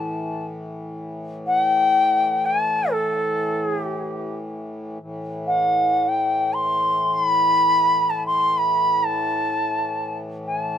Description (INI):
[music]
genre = indian classical, Hindustani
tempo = free time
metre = none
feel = none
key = A raga bhimpalasi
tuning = A4 = 435 Hz
[part]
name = bright reedy bansuri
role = melody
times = 0.0-10.8 s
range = A4 to C6+21c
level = -19 LUFS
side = left 1 dB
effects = none
[part]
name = hand-pumped harmonium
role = drone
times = 0.0-10.8 s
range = A2 to E3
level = -30 LUFS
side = left 1 dB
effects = none
[sound]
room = little or no reverb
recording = recorded outdoors, with no room sound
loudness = -18 LUFS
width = side -9 dB against mid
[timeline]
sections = 0.0-5.0 A section; 5.0-10.8 A section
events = none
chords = none